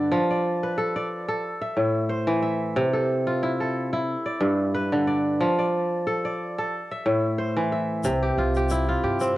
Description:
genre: west african traditional, West African string and xylophone music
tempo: 91 BPM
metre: 4/4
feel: swing 54% on 16ths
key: C major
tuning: A4 = 440 Hz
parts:
  - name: kora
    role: arpeggios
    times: 0.0-9.4 s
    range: G2 to E5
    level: -22 LUFS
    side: equal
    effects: cassette tape
  - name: upright bass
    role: bass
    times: 8.0-9.3 s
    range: C2 to G2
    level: -27 LUFS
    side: equal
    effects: none
  - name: egg shaker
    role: percussion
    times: 8.0-9.3 s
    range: none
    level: -41 LUFS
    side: left 7 dB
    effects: none
room: moderate spring reverb, RT60 1.4 s, studio ambience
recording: home recording on cassette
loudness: -22 LUFS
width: side -16 dB against mid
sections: 0.0-8.0 A section; 8.0-9.4 B section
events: none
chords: 0.1 F; 1.4 Am; 2.8 C; 4.1 G; 5.4 F; 6.7 Am; 8.0 C

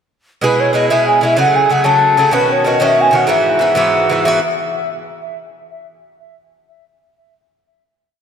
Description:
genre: celtic folk, Celtic jig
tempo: 125 BPM (dotted quarters)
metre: 6/8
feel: straight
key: E major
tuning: A4 = 441 Hz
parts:
  - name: wooden flute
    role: melody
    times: 0.4-4.4 s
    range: B4 to A5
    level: -14 LUFS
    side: equal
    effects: ping-pong delay
  - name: Irish bouzouki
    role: accompaniment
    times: 0.4-4.4 s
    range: G#2 to G#4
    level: -15 LUFS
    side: right 1 dB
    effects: none
room: wet lush hall reverb, RT60 2.5 s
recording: dreamy mix soaked in reverb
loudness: -11 LUFS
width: side -7 dB against mid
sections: 0.4-4.2 A section; 4.2-5.2 final chord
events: none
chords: 0.4 E; 1.4 F#madd9; 2.3 Badd9; 3.3 Eadd9

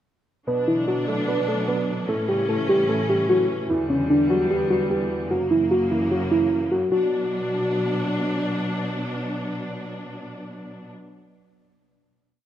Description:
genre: hip hop, trap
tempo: 149 BPM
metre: 4/4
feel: half-time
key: B minor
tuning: A4 = 440 Hz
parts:
  - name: muted felt-like synth keys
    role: melody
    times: 0.5-8.1 s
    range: C#4 to B4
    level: -21 LUFS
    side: equal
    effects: chorus, tape echo
  - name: dark baby grand piano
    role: accompaniment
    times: 0.5-5.3 s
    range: E2 to D4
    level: -30 LUFS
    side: right 1 dB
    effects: none
  - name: clear symphonic string section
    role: sustained chords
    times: 0.5-10.9 s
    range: E2 to D4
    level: -27 LUFS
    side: equal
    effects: none
room: light reverb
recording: rough home demo mix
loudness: -20 LUFS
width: side -11 dB against mid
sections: 0.5-6.9 breakdown; 6.9-10.1 final chord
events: none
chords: 0.5 Bm; 2.1 A; 3.7 Em7; 5.3 F#; 6.9 Bm

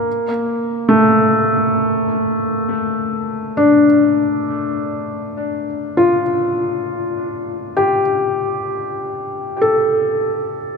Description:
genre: ambient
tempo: free time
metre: none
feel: none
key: unclear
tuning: A4 = 440 Hz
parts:
  - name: felt-muted upright piano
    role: solo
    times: 0.0-10.8 s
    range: A3 to A4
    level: -15 LUFS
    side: left 1 dB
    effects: tape echo
room: wet cathedral reverb, RT60 6.3 s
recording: none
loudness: -15 LUFS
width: side -5 dB against mid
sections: 0.0-10.8 A section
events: none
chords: 0.0 Gm9/A

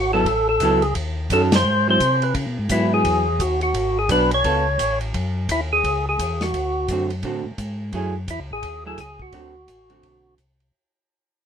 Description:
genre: soul jazz organ trio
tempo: 172 BPM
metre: 4/4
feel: swing 62% on 8ths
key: unclear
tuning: A4 = 440 Hz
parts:
  - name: percussive tonewheel organ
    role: melody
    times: 0.0-10.3 s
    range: E4 to C#5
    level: -20 LUFS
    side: equal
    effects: slow rotary speaker, overdrive
  - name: mellow tonewheel organ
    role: bass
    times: 0.0-10.7 s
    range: G#1 to C#3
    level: -25 LUFS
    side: equal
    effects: slow rotary speaker
  - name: vintage hollow-body jazz guitar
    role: accompaniment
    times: 0.1-4.6, 6.9-10.4 s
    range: D3 to A4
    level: -23 LUFS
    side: right 2 dB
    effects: none
  - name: warm soul drum kit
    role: drums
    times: 0.3-10.7 s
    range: hi-hat, kick drum, ride cymbal, snare drum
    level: -28 LUFS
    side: equal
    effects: none
room: moderate studio ambience, RT60 0.5 s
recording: minimal, uncompressed stereo recording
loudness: -18 LUFS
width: side -8 dB against mid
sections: 0.0-5.1 A section; 5.1-10.7 B section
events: band accent 1.5; fade-out 5.1-10.7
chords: 0.0 F#m11; 1.0 D#m7b5; 1.7 G#aug7; 2.3 C#m11; 3.7 G#m7b5; 4.4 C#aug7; 5.1 F#sus2; 6.5 D7; 7.9 F#m9; 9.3 D7

